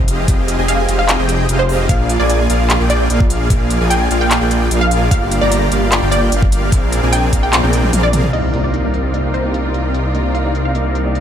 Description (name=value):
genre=future bass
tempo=149 BPM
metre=4/4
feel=half-time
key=C minor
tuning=A4 = 439 Hz
part: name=dense compressed supersaw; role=riff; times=0.0-11.2 s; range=Bb3 to Bb5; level=-18 LUFS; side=equal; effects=sidechain pumping, low-pass filter
part: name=wide detuned saw bass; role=bass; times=0.0-11.2 s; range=F1 to C2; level=-17 LUFS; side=equal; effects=chorus, sidechain pumping
part: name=pop drum kit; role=drums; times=0.1-11.2 s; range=crash cymbal, handclaps, hi-hat, toms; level=-19 LUFS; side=equal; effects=low-pass filter on hats, low-pass filter on snare, low-pass filter on toms, low-pass filter on cymbals
part: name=electronic kick drum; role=drums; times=0.3-7.4 s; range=none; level=-14 LUFS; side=equal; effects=none
part: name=wide unison pluck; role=melody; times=0.7-10.8 s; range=C5 to G5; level=-21 LUFS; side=equal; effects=sidechain pumping, digital delay
part: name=clear studio string section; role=sustained chords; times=8.3-11.2 s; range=C3 to D5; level=-30 LUFS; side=equal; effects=sidechain pumping
part: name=impact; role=sound effects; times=8.3-9.9 s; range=none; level=-27 LUFS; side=equal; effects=none
part: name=dark baby grand piano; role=accompaniment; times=8.5-11.2 s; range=Bb3 to Bb4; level=-25 LUFS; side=right 1 dB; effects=sidechain pumping, ping-pong delay
room=light reverb, digital ambience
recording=none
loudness=-12 LUFS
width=side -9 dB against mid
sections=0.0-8.3 A section; 8.3-11.2 B section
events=drop 0.0-8.3; drum fill 7.5-8.3; impact 8.3-9.9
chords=0.0 Fm9; 1.9 Bb7; 5.1 Gm7; 6.7 Bb9; 8.3 Cm11